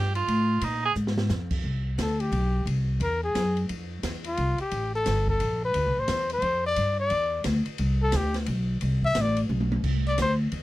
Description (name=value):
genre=jazz, small-group swing and bop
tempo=176 BPM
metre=3/4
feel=swing 62% on 8ths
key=C major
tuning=A4 = 440 Hz
part: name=clear tenor saxophone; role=second line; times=0.0-0.9 s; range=Eb4 to Ab4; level=-26 LUFS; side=right 5 dB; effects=none
part: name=upright bass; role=bass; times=0.0-10.6 s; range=G1 to Bb2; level=-26 LUFS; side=equal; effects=none
part: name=open jazz drum kit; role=drums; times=0.2-10.6 s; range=crash cymbal, hi-hat, kick drum, ride cymbal, snare drum, toms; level=-34 LUFS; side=right 1 dB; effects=none
part: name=mellow trumpet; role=melody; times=2.0-10.3 s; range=F4 to E5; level=-26 LUFS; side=left 2 dB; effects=none
room=little or no reverb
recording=none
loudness=-24 LUFS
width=side -16 dB against mid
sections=0.0-1.6 A section; 1.6-9.8 A section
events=tenor saxophone solo 0.0-1.6; drum fill 1.0-1.3, 9.5-9.8; trumpet solo 1.6-10.6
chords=0.0 F; 0.6 Bb5; 1.6 Csus2; 2.7 Caug; 3.7 F5; 4.7 Gmadd9; 5.7 Dm9; 6.8 G5; 7.8 Csus2; 9.8 C